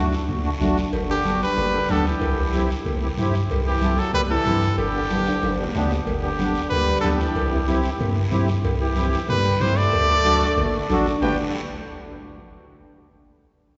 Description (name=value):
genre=latin, cumbia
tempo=187 BPM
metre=4/4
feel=straight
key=G major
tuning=A4 = 441 Hz
part: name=clear trumpet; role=melody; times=0.0-11.4 s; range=G4 to G5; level=-27 LUFS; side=equal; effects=none
part: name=bright trombone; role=second line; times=0.0-11.4 s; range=D3 to A3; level=-32 LUFS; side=equal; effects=none
part: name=accordion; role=accompaniment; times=0.0-11.4 s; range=A3 to B4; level=-29 LUFS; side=equal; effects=light tremolo tuning
part: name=punchy sub bass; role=bass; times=0.0-11.4 s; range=G1 to G2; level=-27 LUFS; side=equal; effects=none
part: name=guiro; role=percussion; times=0.1-11.3 s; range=none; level=-41 LUFS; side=equal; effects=none
part: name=congas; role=percussion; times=0.3-11.3 s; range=none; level=-31 LUFS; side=equal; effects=none
part: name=cowbell and timbales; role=percussion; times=0.9-11.3 s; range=none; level=-35 LUFS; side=equal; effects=none
room=wet church reverb, RT60 3.1 s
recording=recorded in a church or concert hall, nothing above 7.8 kHz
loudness=-22 LUFS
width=mono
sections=0.0-6.1 A section; 6.1-11.2 B section; 11.2-12.5 C section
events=drum fill 5.3-6.1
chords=0.0 D; 0.9 G; 2.2 C; 4.8 G; 7.4 C; 9.9 D; 11.2 G